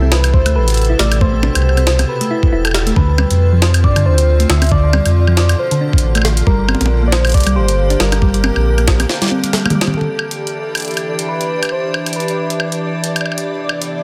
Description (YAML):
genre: IDM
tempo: 137 BPM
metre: 4/4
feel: swing 56% on 16ths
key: E phrygian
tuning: A4 = 440 Hz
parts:
  - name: soft struck synth lead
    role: melody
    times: 0.0-13.3 s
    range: A4 to E5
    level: -24 LUFS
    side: equal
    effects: chorus, tape echo
  - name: icy glass pad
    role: sustained chords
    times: 0.0-14.0 s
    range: B2 to A4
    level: -25 LUFS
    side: equal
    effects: chorus, built-in reverb
  - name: thumb-piano-like synth pluck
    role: arpeggios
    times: 0.0-9.9 s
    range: D3 to A4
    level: -23 LUFS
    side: equal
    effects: chorus, tape echo
  - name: warm sub bass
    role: bass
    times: 0.0-9.1 s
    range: E1 to G2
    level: -16 LUFS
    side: equal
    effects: none
  - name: jungle sampler-style drum kit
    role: drums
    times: 0.1-13.9 s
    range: hi-hat, snare drum, toms, woodblock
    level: -21 LUFS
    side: equal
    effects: soft clipping on snare
  - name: electronic kick drum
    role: drums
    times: 0.3-9.0 s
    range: none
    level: -16 LUFS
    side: equal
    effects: none
  - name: flickering grainy texture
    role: texture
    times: 10.5-14.0 s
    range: D5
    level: -31 LUFS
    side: equal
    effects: built-in reverb
room: light reverb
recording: dense, heavily limited modern master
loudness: -14 LUFS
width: mono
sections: 0.0-10.0 A section; 10.0-14.0 B section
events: drum fill 9.1-10.0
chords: 0.0 Amadd9; 3.0 Dm7; 6.5 Gm; 10.0 Em7; 13.5 Amadd9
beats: 0.34 0.77 | 1.21 1.65 2.09 2.53 | 2.96 3.40 3.84 4.28 | 4.72 5.15 5.59 6.03 | 6.47 6.91 7.34 7.78 | 8.22 8.66 9.10 9.53 | 9.97 10.41 10.85 11.29 | 11.72 12.16 12.60 13.04 | 13.47 13.91